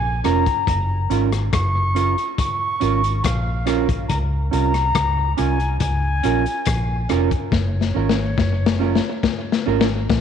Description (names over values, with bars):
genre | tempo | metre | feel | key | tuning
roots reggae | 70 BPM | 4/4 | straight | unclear | A4 = 437 Hz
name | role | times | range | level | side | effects
mellow silver concert flute | melody | 0.0-10.2 s | Db5 to Db6 | -24 LUFS | left 2 dB | tape echo
vintage muted fingered electric bass | bass | 0.0-10.2 s | F1 to Db2 | -21 LUFS | equal | none
mellow electric guitar | accompaniment | 0.2-9.9 s | Db4 to Bb4 | -24 LUFS | right 12 dB | wide subtle chorus, tape echo
crunchy breakbeat drum kit | drums | 0.2-10.2 s | hi-hat, kick drum, rim click, snare drum | -23 LUFS | left 5 dB | tape echo
room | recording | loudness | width
light reverb, small room ambience | 1960s-style stereo | -17 LUFS | side -8 dB against mid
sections
0.0-10.2 A section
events
drum fill 7.5-10.2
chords
0.0 Db6; 0.7 Gbmaj7; 4.1 Db6; 7.5 Gbmaj7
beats
| 0.67 1.52 2.38 3.24 | 4.09 4.95 5.81 6.67 | 7.52 8.38 9.24 10.09